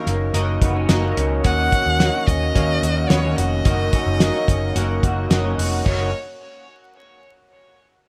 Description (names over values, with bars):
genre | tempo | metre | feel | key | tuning
jangly indie pop | 109 BPM | 4/4 | straight | F# major | A4 = 440 Hz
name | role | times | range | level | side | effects
warm violin | melody | 0.0-6.1 s | A#4 to F#5 | -27 LUFS | equal | none
chorused retro synth keys | accompaniment | 0.0-6.1 s | F#4 to F#5 | -31 LUFS | equal | none
electric guitar through a small old amp | accompaniment | 0.0-6.1 s | D#3 to C#5 | -30 LUFS | equal | none
electric guitar through a small old amp | arpeggios | 0.0-6.1 s | D#3 to F#4 | -30 LUFS | equal | analog chorus, tape echo
vintage muted picked electric bass | bass | 0.1-6.1 s | E#1 to D#2 | -24 LUFS | equal | none
cloth-damped thuddy drum kit | drums | 0.1-6.0 s | crash cymbal, hi-hat, kick drum, snare drum | -22 LUFS | equal | none
room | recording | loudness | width
moderate studio reverb, RT60 0.6 s | vinyl crackle | -19 LUFS | mono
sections
0.0-5.9 A section; 5.9-8.1 B section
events
none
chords
0.0 F#6